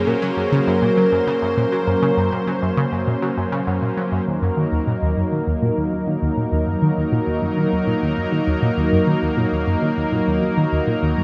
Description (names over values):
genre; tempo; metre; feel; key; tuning
ambient, sequencer-driven space music; 100 BPM; 4/4; straight; Eb minor from 4.3 s; A4 = 440 Hz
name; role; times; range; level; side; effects
mellow horn-like synth lead; melody; 0.0-3.6 s; Bb4; -25 LUFS; equal; subtle chorus, tape echo
lush unison pad; sustained chords; 0.0-11.2 s; Gb3 to C5; -23 LUFS; equal; chorus
tight sequenced synth; riff; 0.0-11.2 s; Eb2 to Gb3; -24 LUFS; equal; chorus, tape echo
room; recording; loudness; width
wet plate reverb, RT60 3.4 s; echo-heavy mix; -20 LUFS; mono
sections
0.0-4.3 A section; 4.3-11.2 B section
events
filter sweep on synth arpeggio sound 4.3-11.2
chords
0.0 Gb; 4.3 Ebm